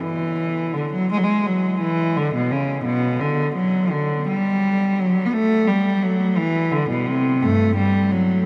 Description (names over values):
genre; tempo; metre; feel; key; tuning
classical, baroque-style suite movement for unaccompanied cello; 86 BPM; 3/4; rubato; D major, G major from 5.4 s; A4 = 441 Hz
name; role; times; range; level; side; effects
rich cello; solo; 0.0-8.5 s; G2 to B3; -20 LUFS; equal; none
room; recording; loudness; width
wet huge ambient reverb, RT60 8.4 s; in a vast, echoing space; -20 LUFS; mono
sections
0.0-8.5 A section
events
none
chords
none